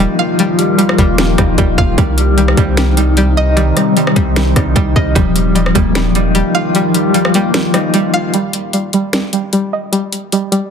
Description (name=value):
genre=hip hop, trap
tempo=151 BPM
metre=4/4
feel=half-time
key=unclear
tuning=A4 = 440 Hz
part: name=mellow electric guitar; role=accompaniment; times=0.0-8.3 s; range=Eb3 to Eb5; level=-15 LUFS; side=left 3 dB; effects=tremolo
part: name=deep dark ambient pad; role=sustained chords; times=0.0-8.3 s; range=C3 to G4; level=-21 LUFS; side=equal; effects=chorus, built-in reverb
part: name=string-like resonator pluck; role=arpeggios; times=0.0-10.7 s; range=G3 to F5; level=-17 LUFS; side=right 2 dB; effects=chorus, low-pass filter, tape echo
part: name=long sustained 808-style bass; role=bass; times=0.0-6.4 s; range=Eb1 to C2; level=-14 LUFS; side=equal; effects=none
part: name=trap drum kit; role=drums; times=0.4-10.6 s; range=finger snaps, hi-hat, kick drum, rim click, snare drum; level=-16 LUFS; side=equal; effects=soft clipping on snare
room=digital ambience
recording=dense, heavily limited modern master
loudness=-11 LUFS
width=side -7 dB against mid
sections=0.0-8.3 A section; 8.3-10.7 B section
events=kick muted 6.7-8.3; break 8.3-10.7; filter sweep on synth pluck 8.3-10.7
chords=0.0 Ebadd9; 2.0 Cm; 5.2 Ebadd9; 8.3 Eb/G